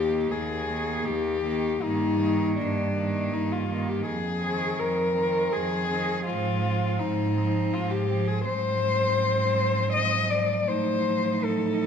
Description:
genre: classical, lyrical piece for cello ensemble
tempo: 81 BPM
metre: 3/4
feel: rubato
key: unclear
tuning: A4 = 444 Hz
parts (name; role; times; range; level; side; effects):
- dark cello; melody; 0.0-11.9 s; D4 to Eb5; -26 LUFS; left 4 dB; none
- rich cello; second line; 0.0-11.9 s; Bb3 to Eb4; -33 LUFS; right 7 dB; none
- warm cello; accompaniment; 0.0-11.9 s; Eb3 to F3; -35 LUFS; left 2 dB; none
- warm cello; bass; 0.0-11.9 s; Eb2 to A2; -29 LUFS; right 3 dB; none
room: moderate scoring stage reverb, RT60 1.5 s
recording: minimal, uncompressed stereo recording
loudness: -23 LUFS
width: side -7 dB against mid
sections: 0.0-11.9 A section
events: none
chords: 0.0 Eb; 1.8 Eb/G; 4.1 Fm7; 6.3 Fm/Ab; 10.7 F7/A

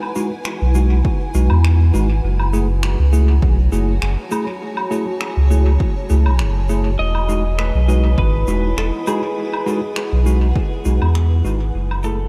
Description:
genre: ambient dub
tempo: 101 BPM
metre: 4/4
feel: swing 55% on 16ths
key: unclear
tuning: A4 = 441 Hz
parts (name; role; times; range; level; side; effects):
- granular cloud pad; sustained chords; 0.0-12.3 s; E4 to A5; -31 LUFS; equal; built-in reverb, subtle chorus
- woodblock, shaker and finger snaps; drums; 0.0-12.2 s; none; -31 LUFS; equal; dub echo
- bell-like tine electric piano; stabs; 0.2-12.2 s; G#3 to G#4; -27 LUFS; equal; vintage 12-bit sampler grit, dub echo
- warm sub bass; bass; 0.6-12.3 s; E1 to E2; -17 LUFS; equal; tube saturation
- electronic kick drum; drums; 1.0-10.7 s; none; -22 LUFS; equal; overdrive
- electric slide guitar; melody; 7.0-12.3 s; G#4 to D#5; -28 LUFS; equal; dub echo
- Celtic harp; arpeggios; 7.6-10.3 s; B4; -37 LUFS; equal; dub echo
room: light reverb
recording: none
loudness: -17 LUFS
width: mono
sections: 0.0-12.3 A section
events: fade-out 10.2-12.3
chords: 0.0 Emaj7; 2.2 F#m9; 7.0 Emaj7; 11.7 F#m9

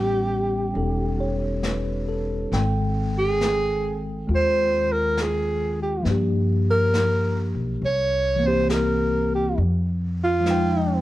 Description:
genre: jazz ballad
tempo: 68 BPM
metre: 4/4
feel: swing 69% on 8ths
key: unclear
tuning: A4 = 440 Hz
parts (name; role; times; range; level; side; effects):
- breathy alto saxophone; melody; 0.0-11.0 s; F4 to Db5; -23 LUFS; right 1 dB; none
- tine electric piano; accompaniment; 0.0-11.0 s; Eb3 to G5; -25 LUFS; left 1 dB; medium stereo tremolo
- upright bass; bass; 0.0-11.0 s; E1 to G2; -25 LUFS; equal; none
- jazz brush drum kit; drums; 0.8-11.0 s; brushed snare drum, hi-hat, snare drum; -34 LUFS; left 2 dB; none
room: light reverb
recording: worn, warbling old tape, cassette tape, warbly pitch drift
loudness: -20 LUFS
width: side -15 dB against mid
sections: 0.0-11.0 A section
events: none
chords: 0.0 A9; 2.5 Abmaj7; 6.1 Gm7; 7.8 C7; 9.6 Fm9

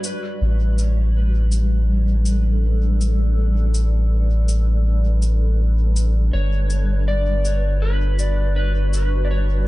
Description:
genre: ambient dub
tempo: 81 BPM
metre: 4/4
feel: swing 59% on 16ths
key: A mixolydian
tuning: A4 = 440 Hz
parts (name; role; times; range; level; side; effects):
- granular cloud pad; sustained chords; 0.0-9.7 s; G3 to B4; -28 LUFS; equal; built-in reverb
- cabasa; drums; 0.0-9.1 s; none; -32 LUFS; left 2 dB; dub echo
- soft dub sub bass; bass; 0.4-9.7 s; G1 to A1; -17 LUFS; equal; none
- electric slide guitar; melody; 6.3-9.7 s; B4 to D5; -29 LUFS; equal; vintage 12-bit sampler grit, dub echo
room: studio reverb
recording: nothing above 10.7 kHz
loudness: -17 LUFS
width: side -18 dB against mid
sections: 0.4-9.7 A section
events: break 0.0-0.4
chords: 0.4 A9sus4; 6.3 Gmaj7

